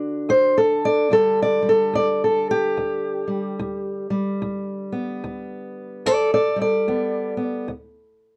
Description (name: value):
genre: acoustic country blues, solo or duo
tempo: 73 BPM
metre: 4/4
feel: swing 60% on 8ths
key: unclear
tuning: A4 = 441 Hz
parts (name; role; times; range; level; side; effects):
- fingerpicked steel-string acoustic guitar; solo; 0.0-8.4 s; D2 to D5; -22 LUFS; equal; none
room: moderate studio ambience, RT60 0.5 s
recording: worn, warbling old tape, cassette tape, warbly pitch drift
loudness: -21 LUFS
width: mono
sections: 0.0-8.4 A section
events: steel-string acoustic guitar solo 0.0-8.4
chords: 0.0 D; 1.1 G; 7.7 N.C.